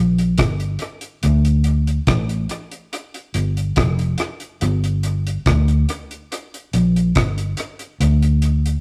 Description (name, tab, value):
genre	roots reggae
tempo	71 BPM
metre	4/4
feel	straight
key	G minor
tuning	A4 = 441 Hz
part	vintage muted fingered electric bass	bass	0.0-8.8 s	F1 to D2	-19 LUFS	equal	none
part	deep reggae drum kit	drums	0.2-8.8 s	hi-hat, kick drum, rim click	-24 LUFS	equal	dub echo
room	moderate stone room reverb, RT60 1.0 s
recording	rough rehearsal-room recording, warm saturation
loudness	-19 LUFS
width	mono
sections	0.0-8.8 A section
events	none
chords	none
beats	0.39 | 1.23 2.08 2.92 3.77 | 4.62 5.46 6.31 7.16 | 8.00